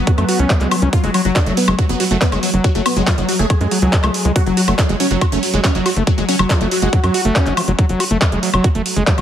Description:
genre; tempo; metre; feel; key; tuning
psychedelic trance; 140 BPM; 4/4; straight; F# minor; A4 = 441 Hz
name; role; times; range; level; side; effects
supersaw stab; melody; 0.0-7.7 s; F#3 to G#4; -21 LUFS; equal; phaser, sidechain pumping, tape echo
swarming drone; sustained chords; 0.0-9.2 s; F#3; -24 LUFS; left 1 dB; built-in reverb, sidechain pumping
tight sequencer bass; bass; 0.0-9.2 s; F#1 to F#2; -19 LUFS; equal; none
overdriven acid bass; riff; 0.1-9.2 s; E#3 to F#4; -21 LUFS; moving between left 3 dB and right 4 dB; distortion, auto-pan, sidechain pumping, tape echo
drum and bass drum kit; drums; 0.1-9.2 s; handclaps, hi-hat, woodblock; -21 LUFS; equal; overdrive
electronic kick drum; drums; 0.1-9.2 s; none; -15 LUFS; equal; overdrive
room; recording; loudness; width
light reverb, digital ambience; heavily compressed radio sound; -13 LUFS; side -10 dB against mid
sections
0.0-9.2 A section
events
none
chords
0.0 F#5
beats
0.07 0.50 | 0.93 1.36 1.79 2.21 | 2.64 3.07 3.50 3.93 | 4.36 4.79 5.21 5.64 | 6.07 6.50 6.93 7.36 | 7.79 8.21 8.64 9.07

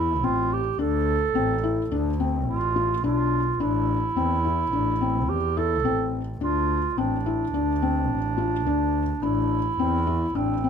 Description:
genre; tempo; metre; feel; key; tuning
contemporary instrumental, chamber music in an uneven meter; 107 BPM; 5/4; straight; A minor; A4 = 439 Hz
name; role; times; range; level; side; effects
mellow clarinet; second line; 0.0-10.7 s; C4 to A4; -26 LUFS; right 6 dB; none
felt-muted upright piano; arpeggios; 0.0-10.7 s; C4 to F4; -26 LUFS; left 8 dB; none
rich double bass; bass; 0.0-10.7 s; A1 to E2; -27 LUFS; right 1 dB; none
room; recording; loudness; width
little or no reverb; close, detailed microphones; -22 LUFS; side -7 dB against mid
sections
0.0-10.7 A section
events
none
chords
0.0 Am; 0.8 Dm7; 3.6 Am; 6.4 Dm7; 9.2 Am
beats
0.23 | 0.79 1.35 1.92 2.48 3.04 | 3.60 4.16 4.73 5.29 5.85 | 6.41 6.97 7.54 8.10 8.66 | 9.23 9.79 10.36

